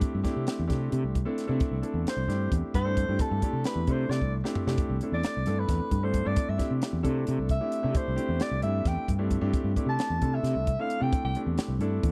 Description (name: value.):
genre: electric jazz fusion.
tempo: 265 BPM (eighths).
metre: 7/8.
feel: straight.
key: C major.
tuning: A4 = 440 Hz.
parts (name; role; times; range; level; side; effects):
warm concert grand piano; accompaniment; 0.0-12.1 s; A3 to A4; -35 LUFS; equal; none.
crisp fusion drum kit; drums; 0.0-12.1 s; hi-hat, kick drum, snare drum, toms; -32 LUFS; equal; none.
fretless electric bass; bass; 0.1-12.1 s; C2 to C3; -31 LUFS; equal; none.
mellow soprano saxophone; melody; 1.8-11.4 s; A4 to A5; -35 LUFS; equal; slapback echo.
room: little or no reverb.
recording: dry, close 1970s-style studio recording.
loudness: -28 LUFS.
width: mono.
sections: 0.0-12.1 A section.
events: soprano saxophone solo 0.0-12.1; drum fill 4.1-4.8.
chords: 0.0 C69.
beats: | 0.02 0.25 0.48 0.70 0.93 1.16 1.38 | 1.61 1.84 2.06 2.29 2.52 2.74 2.97 | 3.20 3.42 3.65 3.88 4.10 4.33 4.56 | 4.78 5.01 5.24 5.46 5.69 5.92 6.14 | 6.37 6.59 6.82 7.05 7.27 7.50 7.73 | 7.95 8.18 8.41 8.63 8.86 9.09 9.31 | 9.54 9.77 9.99 10.22 10.45 10.68 10.90 | 11.13 11.36 11.58 11.81 12.04.